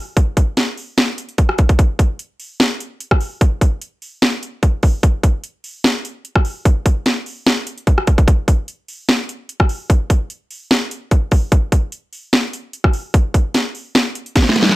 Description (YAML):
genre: hip hop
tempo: 148 BPM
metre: 4/4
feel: half-time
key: none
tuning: none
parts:
  - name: trap drum kit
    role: drums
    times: 0.2-14.8 s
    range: hi-hat, kick drum, rim click, snare drum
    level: -14 LUFS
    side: equal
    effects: overdrive
room: light reverb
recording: none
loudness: -15 LUFS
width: side -18 dB against mid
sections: 0.0-1.8 A section; 1.8-14.8 A section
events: drum fill 14.4-14.8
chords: none